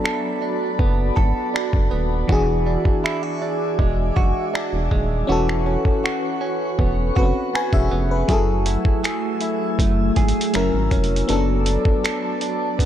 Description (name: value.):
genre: contemporary R&B.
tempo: 80 BPM.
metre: 4/4.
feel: straight.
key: unclear.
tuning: A4 = 441 Hz.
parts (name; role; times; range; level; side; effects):
FM electric piano; accompaniment; 0.0-12.9 s; E3 to G#5; -24 LUFS; left 4 dB; chorus.
glassy FM pad; sustained chords; 0.0-12.9 s; A3 to E6; -27 LUFS; equal; ensemble chorus, built-in reverb, sidechain pumping.
direct-recorded clean electric guitar; arpeggios; 0.0-12.9 s; E3 to A4; -26 LUFS; right 6 dB; harmonic tremolo, digital delay.
dusty soul sampler-style drum kit; drums; 0.1-12.9 s; finger snaps, hi-hat, kick drum; -22 LUFS; equal; vintage 12-bit sampler grit.
rubbery square bass; bass; 0.8-12.9 s; D#1 to G#1; -22 LUFS; equal; none.
room: digital ambience.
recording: none.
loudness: -18 LUFS.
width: side -11 dB against mid.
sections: 0.0-12.9 A section.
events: break 0.0-8.3.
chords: 0.0 Bm7/F#; 2.3 E9; 5.3 A69/E; 8.3 F#m9; 10.5 F#7; 11.3 Bm7/F#.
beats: 0.04 0.79 1.54 | 2.29 3.04 3.79 4.54 | 5.29 6.04 6.79 7.54 | 8.29 9.04 9.79 10.54 | 11.29 12.04 12.79.